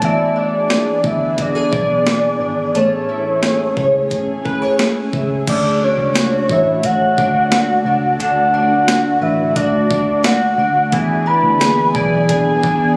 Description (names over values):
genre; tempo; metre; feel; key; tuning
dream pop; 88 BPM; 4/4; straight; D lydian; A4 = 436 Hz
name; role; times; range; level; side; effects
soft octave-layered synth lead; melody; 0.0-13.0 s; C#5 to B5; -19 LUFS; equal; chorus, tape echo
ethereal airy pad; sustained chords; 0.0-13.0 s; E3 to G#4; -24 LUFS; equal; ensemble chorus, built-in reverb
fingerpicked twelve-string acoustic guitar; arpeggios; 0.0-13.0 s; D3 to D5; -23 LUFS; equal; ensemble chorus, tape echo
vintage muted picked electric bass; bass; 0.0-13.0 s; G#1 to E2; -26 LUFS; equal; none
crisp 8-bit digital drum machine; drums; 0.0-12.8 s; crash cymbal, hi-hat, kick drum, snare drum, tambourine; -22 LUFS; equal; none
room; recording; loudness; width
moderate lush hall reverb, RT60 2.3 s; recorded on a phone in the room, club reverb, compression; -16 LUFS; mono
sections
0.0-5.5 A section; 5.5-13.0 B section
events
none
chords
0.0 E7; 2.8 Amaj7; 5.5 Dmaj7; 10.9 E7